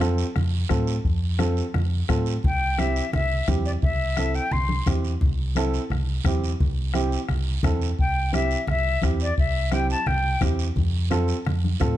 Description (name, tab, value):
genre	latin, cumbia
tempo	173 BPM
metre	4/4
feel	straight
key	C major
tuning	A4 = 441 Hz
part	dark upright piano	accompaniment	0.0-12.0 s	C4 to A4	-29 LUFS	right 3 dB	none
part	fingered electric bass	bass	0.0-12.0 s	C2 to A2	-24 LUFS	equal	none
part	bombo	percussion	0.0-12.0 s	none	-26 LUFS	left 1 dB	none
part	congas	percussion	0.0-12.0 s	none	-30 LUFS	left 1 dB	none
part	guiro	percussion	0.0-12.0 s	none	-38 LUFS	right 10 dB	none
part	jazz flute	melody	2.5-4.9, 8.0-10.4 s	D5 to C6	-26 LUFS	left 3 dB	none
room	light reverb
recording	none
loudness	-21 LUFS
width	side -13 dB against mid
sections	0.0-8.0 A section; 8.0-12.0 A section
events	none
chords	0.0 F; 2.4 C; 10.8 F